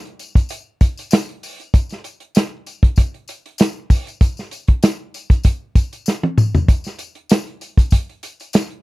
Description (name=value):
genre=soul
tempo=97 BPM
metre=4/4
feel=swing 54% on 16ths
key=none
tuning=none
part: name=warm soul drum kit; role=drums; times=0.1-8.8 s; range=hi-hat, kick drum, snare drum, toms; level=-13 LUFS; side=equal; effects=none
part: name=tambourine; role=percussion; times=0.2-8.7 s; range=none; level=-34 LUFS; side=left 6 dB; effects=none
room=little or no reverb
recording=dry, close 1970s-style studio recording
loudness=-15 LUFS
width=side -21 dB against mid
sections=0.0-8.8 A section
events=drum fill 6.1-6.7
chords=none